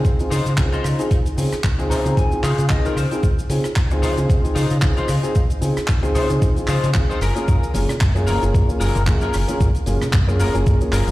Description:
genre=nu-disco, nu disco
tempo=113 BPM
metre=4/4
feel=swing 56% on 16ths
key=Db major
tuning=A4 = 441 Hz
part: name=dark concert grand piano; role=accompaniment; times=0.0-10.9 s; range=Bb3 to Ab4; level=-24 LUFS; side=equal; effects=sidechain pumping, digital delay
part: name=clean electric guitar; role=riff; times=0.0-11.1 s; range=Eb4 to Bb5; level=-26 LUFS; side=left 3 dB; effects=ensemble chorus, digital delay
part: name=fingered electric bass with an envelope filter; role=bass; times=0.0-11.1 s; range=Gb1 to Db3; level=-20 LUFS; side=equal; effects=sidechain pumping
part: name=electronic kick drum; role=drums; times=0.0-10.8 s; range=none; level=-18 LUFS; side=equal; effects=none
part: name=tight funk drum kit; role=drums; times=0.0-11.1 s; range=cabasa, handclaps, hi-hat, rim click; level=-29 LUFS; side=equal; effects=none
part: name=congas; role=percussion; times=7.7-11.1 s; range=none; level=-29 LUFS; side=equal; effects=none
room=small room ambience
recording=played on a big sound system in a bare room, stone room reverb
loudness=-16 LUFS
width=side -17 dB against mid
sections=0.0-11.1 A section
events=clean electric guitar fill 1.6-3.2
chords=0.0 Dbmaj9; 7.2 Gbmaj9

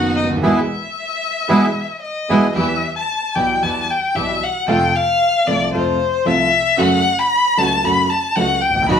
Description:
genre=tango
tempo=114 BPM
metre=4/4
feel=rubato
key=unclear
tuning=A4 = 439 Hz
part: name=bandoneon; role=melody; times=0.0-2.5 s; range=B3 to G#4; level=-19 LUFS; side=right 1 dB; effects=none
part: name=warm violin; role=second line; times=0.0-9.0 s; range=C5 to B5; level=-17 LUFS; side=left 3 dB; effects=none
part: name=warm concert grand piano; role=accompaniment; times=0.0-9.0 s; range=F#1 to G4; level=-20 LUFS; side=right 2 dB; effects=none
part: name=rich chamber string section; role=stabs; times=0.0-9.0 s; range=G#3 to G4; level=-21 LUFS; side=right 1 dB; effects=none
room=wet studio reverb, RT60 0.6 s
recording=band playing live in one room, vinyl crackle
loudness=-15 LUFS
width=side -8 dB against mid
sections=0.0-2.6 A section; 2.6-9.0 B section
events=band accent 0.4-2.6; violin solo 2.6-9.0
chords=0.4 E; 2.6 Em; 4.7 F; 6.8 F#m

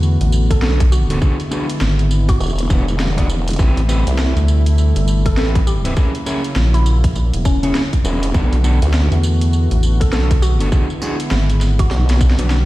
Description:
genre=glitch hop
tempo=101 BPM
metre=4/4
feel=swing 61% on 16ths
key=unclear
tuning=A4 = 441 Hz
part: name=warm analog pad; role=sustained chords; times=0.0-12.7 s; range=C3 to F#4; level=-24 LUFS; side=right 1 dB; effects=chorus, vintage 12-bit sampler grit, sidechain pumping
part: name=rubbery square bass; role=bass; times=0.0-12.7 s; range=E1 to E2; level=-14 LUFS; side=equal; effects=none
part: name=drum and bass drum kit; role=drums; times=0.0-12.6 s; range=hi-hat, snare drum, tambourine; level=-25 LUFS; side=equal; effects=none
part: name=woody wave-folded pluck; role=melody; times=0.5-12.0 s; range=C#4 to A4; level=-27 LUFS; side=left 1 dB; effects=analog chorus, dub echo
part: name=electronic kick drum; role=drums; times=0.5-12.4 s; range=none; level=-15 LUFS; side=equal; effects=none
part: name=electric guitar at the edge of break-up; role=stabs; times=0.6-12.6 s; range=B3 to D5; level=-24 LUFS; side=right 1 dB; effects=sidechain pumping, dub echo
part: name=formant-sweep wobble bass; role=bass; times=2.4-4.3, 8.0-12.4 s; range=E1 to D2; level=-16 LUFS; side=equal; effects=chorus
room=digital ambience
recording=played on a big sound system in a bare room, stone room reverb, vinyl crackle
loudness=-13 LUFS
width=side -17 dB against mid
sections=0.0-12.7 A section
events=drum fill 11.9-12.7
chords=0.0 Bm7; 1.2 E7; 3.6 Am7; 6.0 F#7; 8.3 Bm7; 10.7 E7; 11.9 Gmaj7

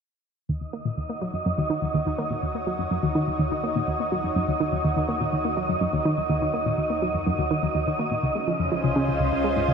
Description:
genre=ambient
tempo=124 BPM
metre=4/4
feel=straight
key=unclear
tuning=A4 = 440 Hz
part: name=lush unison pad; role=sustained chords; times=0.5-9.7 s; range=Db3 to Db5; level=-30 LUFS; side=equal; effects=chorus, shimmer reverb
part: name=analog pluck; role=riff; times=0.5-9.7 s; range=Db2 to Bb3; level=-25 LUFS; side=equal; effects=chorus, tape echo
part: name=round analog bass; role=bass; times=0.5-9.7 s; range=Db2 to Eb2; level=-39 LUFS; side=left 1 dB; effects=none
part: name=wind-like tuned noise texture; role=texture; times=0.7-9.7 s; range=Eb5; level=-28 LUFS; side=right 1 dB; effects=built-in reverb, shimmer reverb
room=moderate plate reverb, RT60 2.7 s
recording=none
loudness=-23 LUFS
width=side -6 dB against mid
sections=0.5-9.7 A section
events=fade-in on analog synth pad 0.5-9.7; filter sweep on synth arpeggio sound 0.5-9.7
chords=0.5 Ebm7; 8.2 Dbmaj7

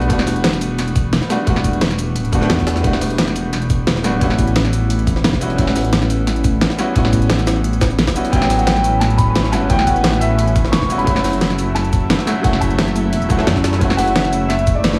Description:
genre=liquid drum and bass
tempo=175 BPM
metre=4/4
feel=straight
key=unclear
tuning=A4 = 440 Hz
part: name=bright grand piano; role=accompaniment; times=0.0-15.0 s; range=F#3 to A4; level=-23 LUFS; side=equal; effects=none
part: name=dark detuned saw bass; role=bass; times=0.0-15.0 s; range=D1 to F#2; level=-21 LUFS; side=equal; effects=none
part: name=jungle sampler-style drum kit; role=drums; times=0.0-15.0 s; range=hi-hat, snare drum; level=-27 LUFS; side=equal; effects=high-pass filter on hats, high-pass filter on snare
part: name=electronic kick drum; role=drums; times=0.1-14.7 s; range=none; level=-22 LUFS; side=equal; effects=none
part: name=pop drum kit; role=drums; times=0.1-14.9 s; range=hi-hat, shaker, snare drum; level=-23 LUFS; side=equal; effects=none
part: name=dark baby grand piano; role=melody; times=8.3-15.0 s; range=D5 to C#6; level=-23 LUFS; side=equal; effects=none
part: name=lush unison pad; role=sustained chords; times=8.3-15.0 s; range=A3 to E5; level=-28 LUFS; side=equal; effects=chorus, phaser, sidechain pumping
room=light reverb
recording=studio reverb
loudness=-16 LUFS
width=mono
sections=0.0-15.0 A section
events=none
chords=0.0 Em11; 4.2 A13; 11.1 F#m7

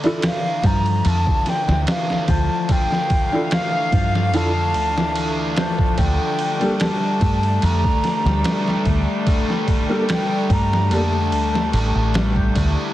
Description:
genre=trip hop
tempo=73 BPM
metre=4/4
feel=swing 54% on 16ths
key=unclear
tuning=A4 = 440 Hz
part: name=felt-muted upright piano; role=accompaniment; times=0.0-11.1 s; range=Bb3 to A4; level=-24 LUFS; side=right 1 dB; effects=tremolo
part: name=rich chamber string section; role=sustained chords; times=0.0-12.9 s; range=G3 to F5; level=-27 LUFS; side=right 1 dB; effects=vintage 12-bit sampler grit
part: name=Celtic harp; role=arpeggios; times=0.0-12.9 s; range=D3 to G4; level=-25 LUFS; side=left 4 dB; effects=tape echo
part: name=trip hop sampler-style drum kit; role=drums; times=0.0-12.8 s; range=kick drum, ride cymbal, snare drum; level=-22 LUFS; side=equal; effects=overdrive
part: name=mellow hollow concert flute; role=melody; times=0.3-12.2 s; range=F5 to Bb5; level=-24 LUFS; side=equal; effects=vintage 12-bit sampler grit, dub echo
part: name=deep dub fingered electric bass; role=bass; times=0.6-12.7 s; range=A1 to G2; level=-20 LUFS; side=equal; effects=none
room=light reverb, small room ambience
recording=heavily compressed radio sound, multiband compression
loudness=-17 LUFS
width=side -14 dB against mid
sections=0.0-12.9 A section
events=none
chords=0.0 Dmadd9; 6.0 Gmadd9/D

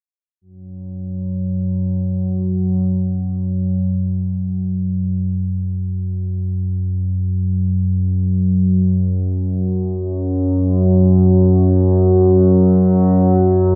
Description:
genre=ambient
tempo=free time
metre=none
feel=none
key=unclear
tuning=A4 = 440 Hz
part: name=analog drone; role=solo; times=0.6-13.8 s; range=F#2 to F#3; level=-17 LUFS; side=equal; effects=chorus, delay
room=wet cathedral reverb, RT60 5.5 s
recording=in a vast, echoing space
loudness=-17 LUFS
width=mono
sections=0.4-13.8 A section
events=none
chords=none

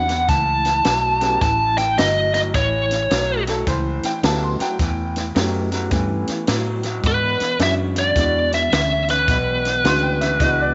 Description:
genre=electric blues shuffle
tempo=107 BPM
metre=4/4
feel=swing 64% on 8ths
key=A mixolydian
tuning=A4 = 440 Hz
part: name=biting lead guitar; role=melody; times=0.0-3.4, 7.1-10.7 s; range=B4 to A5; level=-21 LUFS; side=equal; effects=overdrive
part: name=dark grand piano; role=accompaniment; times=0.0-10.7 s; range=G#3 to G4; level=-30 LUFS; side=equal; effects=none
part: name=electric guitar through a small old amp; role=riff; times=0.0-10.7 s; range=E2 to B3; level=-29 LUFS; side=equal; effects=harmonic tremolo
part: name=vintage muted fingered electric bass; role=bass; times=0.0-10.7 s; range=G1 to A2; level=-27 LUFS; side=equal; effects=none
part: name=compact cocktail drum kit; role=drums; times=0.1-10.6 s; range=hi-hat, kick drum, snare drum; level=-26 LUFS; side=equal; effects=none
part: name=clear upright piano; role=second line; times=3.5-5.7, 9.8-10.7 s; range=A4 to C6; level=-29 LUFS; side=equal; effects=none
room=moderate plate reverb, RT60 1.5 s, small room ambience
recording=nothing above 7.8 kHz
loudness=-19 LUFS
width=mono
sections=0.0-10.7 A section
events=none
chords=0.3 A9; 7.0 E9

